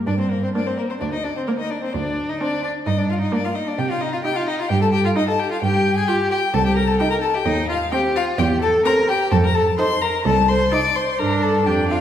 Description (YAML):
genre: quick classical-period movement for string quartet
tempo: 129 BPM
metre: 4/4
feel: rubato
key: G minor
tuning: A4 = 440 Hz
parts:
  - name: clear violin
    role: melody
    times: 0.1-12.0 s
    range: Bb4 to D6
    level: -23 LUFS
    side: left 5 dB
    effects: none
  - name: rich violin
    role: second line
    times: 0.1-12.0 s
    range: Bb3 to D5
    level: -22 LUFS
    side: left 1 dB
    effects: none
  - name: rich cello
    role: bass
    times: 0.1-12.0 s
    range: C2 to C3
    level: -22 LUFS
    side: right 2 dB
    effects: none
  - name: rich viola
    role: accompaniment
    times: 0.6-12.0 s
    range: Bb3 to F4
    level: -27 LUFS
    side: right 2 dB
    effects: none
room: wet recital hall reverb, RT60 1.6 s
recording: heard from further back in the room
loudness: -17 LUFS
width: side -10 dB against mid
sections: 0.1-12.0 A section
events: none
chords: 0.1 Gm; 1.9 Cmadd9/D; 2.9 Gm; 3.8 Cm; 5.6 Fmadd9/G; 6.5 Cm; 7.5 Cm/Eb; 8.4 C/E; 9.3 F5; 11.2 G5